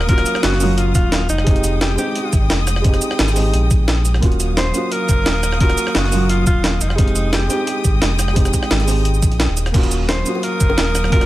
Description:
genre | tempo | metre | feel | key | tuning
liquid drum and bass | 174 BPM | 4/4 | straight | Eb dorian | A4 = 440 Hz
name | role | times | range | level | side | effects
breathy alto saxophone | melody | 0.0-2.5, 4.6-8.0, 10.1-11.3 s | Eb4 to C5 | -23 LUFS | equal | ping-pong delay
felt-muted upright piano | accompaniment | 0.0-11.3 s | Gb3 to G4 | -23 LUFS | right 2 dB | none
warm studio string section | sustained chords | 0.0-11.3 s | Gb3 to Eb6 | -26 LUFS | left 1 dB | sidechain pumping
sub bass with octave | bass | 0.0-11.3 s | Eb1 to Bb1 | -18 LUFS | equal | none
breakbeat sampler-style drum kit | drums | 0.0-11.3 s | crash cymbal, hi-hat, rim click, shaker, snare drum | -21 LUFS | equal | none
electronic kick drum | drums | 0.1-11.2 s | none | -16 LUFS | equal | none
bongos | percussion | 9.7-11.0 s | none | -26 LUFS | left 4 dB | none
room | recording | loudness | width
studio reverb | none | -14 LUFS | side -16 dB against mid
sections
0.0-11.3 A section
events
none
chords
0.0 Ebm9; 1.3 Fm9; 4.2 Ebm9; 6.8 Fm9; 9.7 Ebm9

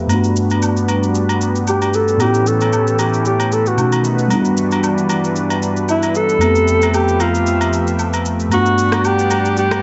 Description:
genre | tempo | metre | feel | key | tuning
amapiano | 114 BPM | 4/4 | swing 55% on 16ths | unclear | A4 = 438 Hz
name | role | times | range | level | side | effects
mellow tine electric piano | accompaniment | 0.0-9.8 s | F2 to F#5 | -19 LUFS | equal | low-pass filter
lush unison pad | sustained chords | 0.0-9.8 s | G2 to F#5 | -25 LUFS | equal | chorus, low-pass filter
electronic shaker and rim click | drums | 0.1-9.8 s | none | -30 LUFS | equal | none
agogo bells and woodblock | percussion | 0.1-9.8 s | none | -27 LUFS | equal | none
breathy alto saxophone | melody | 1.7-9.8 s | E4 to A4 | -19 LUFS | equal | low-pass filter, analog delay
room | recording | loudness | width
moderate spring reverb, RT60 2.3 s | echo-heavy mix, nothing above 7.9 kHz | -16 LUFS | mono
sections
0.0-9.8 A section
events
filter sweep 0.0-9.8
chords
0.1 Gmaj7; 2.2 A9; 3.8 B7; 4.3 Em9/G; 6.4 Fmaj9#11; 8.5 Gmaj7

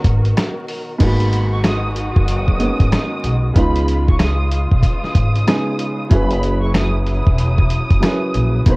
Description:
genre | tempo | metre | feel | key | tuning
hip hop, boom-bap hip-hop | 94 BPM | 4/4 | swing 63% on 16ths | G# minor | A4 = 440 Hz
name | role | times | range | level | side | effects
warm upright piano | accompaniment | 0.0-8.8 s | G#2 to C#5 | -22 LUFS | right 1 dB | high-pass filter, low-pass filter
warm symphonic string section | sustained chords | 0.0-8.8 s | C#3 to A#4 | -28 LUFS | left 1 dB | high-pass filter, low-pass filter
upright bass | bass | 0.0-8.8 s | E1 to C#2 | -18 LUFS | equal | transformer saturation
dusty soul sampler-style drum kit | drums | 0.0-8.8 s | crash cymbal, hi-hat, kick drum, rim click, snare drum | -16 LUFS | equal | overdrive, vintage 12-bit sampler grit
warm studio violin section | melody | 1.0-8.8 s | B5 to D#6 | -27 LUFS | equal | high-pass filter, low-pass filter, tape echo
room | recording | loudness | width
small room ambience | worn, warbling old tape, cassette tape, vinyl crackle, warbly pitch drift | -14 LUFS | side -25 dB against mid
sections
0.0-1.0 A section; 1.0-8.8 A section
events
break 0.0-1.0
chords
0.0 Bmaj7; 1.0 G#m7; 3.6 C#7; 6.1 F#7sus4

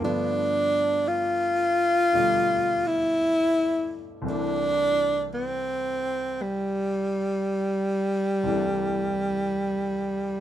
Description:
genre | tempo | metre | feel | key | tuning
jazz ballad | 57 BPM | 4/4 | swing 67% on 8ths | C major | A4 = 439 Hz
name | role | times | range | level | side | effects
warm tenor saxophone | melody | 0.0-10.4 s | G3 to F4 | -23 LUFS | equal | none
warm grand piano | accompaniment | 0.0-10.4 s | C2 to D4 | -33 LUFS | left 1 dB | none
room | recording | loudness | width
light reverb | minimal, uncompressed stereo recording | -23 LUFS | side -11 dB against mid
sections
0.0-10.4 A section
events
none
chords
0.0 G9; 4.2 C6

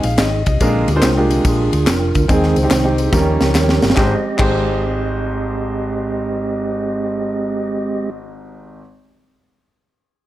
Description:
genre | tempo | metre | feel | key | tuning
uptempo gospel | 143 BPM | 4/4 | swing 65% on 8ths | Ab major | A4 = 439 Hz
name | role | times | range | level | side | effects
clear concert grand piano | accompaniment | 0.0-8.8 s | Ab1 to F5 | -21 LUFS | equal | none
percussive tonewheel organ | sustained chords | 0.0-8.1 s | D3 to Eb5 | -20 LUFS | right 3 dB | fast rotary speaker
hollow-body short-scale fingered electric bass | bass | 0.0-8.8 s | F1 to Eb2 | -20 LUFS | equal | none
crisp fusion drum kit | drums | 0.0-4.5 s | crash cymbal, kick drum, ride cymbal, snare drum | -19 LUFS | equal | none
tambourine and handclaps | percussion | 0.0-4.5 s | none | -27 LUFS | left 4 dB | none
room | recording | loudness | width
light reverb | none | -14 LUFS | side -14 dB against mid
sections
0.0-4.0 A section; 4.0-7.3 B section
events
grand piano fill 0.0-0.6; tonewheel organ solo 0.0-4.0; drum fill 3.1-4.0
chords
0.0 Ab; 0.6 Bb7; 2.3 Ab; 3.1 Eb7; 4.0 Abmaj7

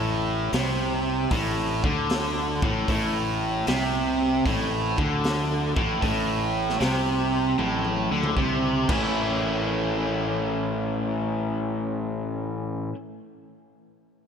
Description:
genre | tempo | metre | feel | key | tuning
blues rock power trio and southern rock | 77 BPM | 4/4 | swing 67% on 8ths | unclear | A4 = 440 Hz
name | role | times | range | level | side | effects
overdriven electric guitar | riff | 0.0-13.0 s | A2 to E4 | -24 LUFS | equal | none
fuzz fingered electric bass | bass | 0.0-12.9 s | A1 to D2 | -30 LUFS | equal | overdrive
raw garage drum kit | drums | 0.5-9.0 s | crash cymbal, hi-hat, kick drum, snare drum, toms | -30 LUFS | equal | none
room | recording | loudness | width
moderate lush hall reverb, RT60 2.9 s | big arena sound | -23 LUFS | side -7 dB against mid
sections
0.0-9.2 A section; 9.2-12.3 B section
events
drum fill 7.6-9.2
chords
0.0 Amadd11; 8.8 A

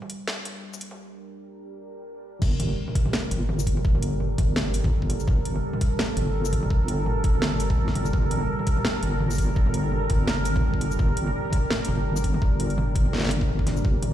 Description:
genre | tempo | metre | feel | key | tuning
half-time drum and bass | 168 BPM | 4/4 | swing 57% on 16ths, half-time | G minor | A4 = 440 Hz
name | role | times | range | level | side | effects
deep dark ambient pad | sustained chords | 0.0-14.1 s | G3 to Bb4 | -30 LUFS | right 1 dB | chorus, built-in reverb, vintage 12-bit sampler grit, sidechain pumping
drum and bass drum kit | drums | 0.0-14.1 s | crash cymbal, hi-hat, shaker, snare drum, toms | -29 LUFS | equal | high-pass filter on hats, high-pass filter on toms, high-pass filter on snare, high-pass filter on perc, high-pass filter on cymbals, high-pass filter on room
deep soft wobble bass | bass | 2.4-14.1 s | G1 | -26 LUFS | equal | chorus
electronic kick drum | drums | 2.4-13.9 s | none | -23 LUFS | equal | none
room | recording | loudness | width
light reverb | played on a big sound system in a bare room, large studio reverb, high-pass filter | -22 LUFS | side -12 dB against mid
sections
0.0-2.4 A section; 2.4-14.1 B section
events
build-up 0.0-2.4; filter sweep 0.0-2.4; break 1.0-2.4; drop 2.4-14.1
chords
0.0 Gmadd9

